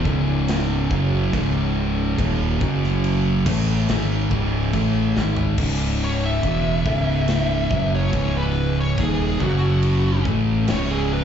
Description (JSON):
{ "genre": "stoner and doom metal", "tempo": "71 BPM", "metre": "4/4", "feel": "straight", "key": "C# minor", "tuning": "A4 = 440 Hz", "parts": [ { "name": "tonewheel organ", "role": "sustained chords", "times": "0.0-11.2 s", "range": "C#3 to C#5", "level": "-35 LUFS", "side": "equal", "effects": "none" }, { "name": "thick fuzz guitar", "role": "riff", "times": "0.0-11.2 s", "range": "C#2 to A3", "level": "-24 LUFS", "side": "left 8 dB", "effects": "distortion" }, { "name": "thick fuzz guitar", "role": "riff", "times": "0.0-11.2 s", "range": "C#2 to A3", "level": "-23 LUFS", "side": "right 6 dB", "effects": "distortion, slapback echo" }, { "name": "growling fingered electric bass", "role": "bass", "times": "0.0-11.2 s", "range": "C#1 to A1", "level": "-24 LUFS", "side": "left 1 dB", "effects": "overdrive" }, { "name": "big rock drum kit", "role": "drums", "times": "0.1-10.9 s", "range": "crash cymbal, kick drum, snare drum, toms", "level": "-28 LUFS", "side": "left 1 dB", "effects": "none" }, { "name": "fuzz lead guitar", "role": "melody", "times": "6.0-11.2 s", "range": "F#4 to E5", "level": "-26 LUFS", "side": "equal", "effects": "wah, distortion, slapback echo, analog delay" } ], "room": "light reverb", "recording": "live gig heard through the venue's PA, club reverb, nothing above 7.8 kHz", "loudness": "-18 LUFS", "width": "side -8 dB against mid", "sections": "0.0-5.6 A section; 5.6-11.2 B section", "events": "drum fill 5.2-5.6; lead electric guitar solo 5.6-11.2", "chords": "0.0 C#5; 2.6 F#5; 3.5 C#m; 9.4 F#5; 10.3 C#m", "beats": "0.48 1.33 | 2.19 3.04 3.89 4.74 | 5.59 6.44 7.29 8.14 | 8.98 9.83 10.68" }